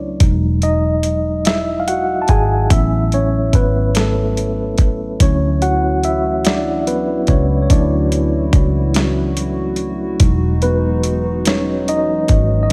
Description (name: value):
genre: slow six-eight R&B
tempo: 48 BPM (dotted quarters)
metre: 6/8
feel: straight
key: E major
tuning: A4 = 440 Hz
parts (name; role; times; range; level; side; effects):
- mellow tine electric piano; accompaniment; 0.0-12.7 s; F#3 to A5; -20 LUFS; equal; none
- vintage muted fingered electric bass; bass; 0.0-12.7 s; E1 to D2; -21 LUFS; equal; none
- dusty soul sampler-style drum kit; drums; 0.2-12.7 s; hi-hat, kick drum, snare drum; -17 LUFS; equal; overdrive
- hollow soft pad; sustained chords; 5.2-12.7 s; E3 to F#4; -27 LUFS; equal; chorus
room: light reverb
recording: none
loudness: -16 LUFS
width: mono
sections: 0.0-12.7 A section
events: tine electric piano solo 0.0-12.7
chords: 0.2 Emaj9; 2.7 A69; 5.2 Dmaj9; 10.2 Emaj9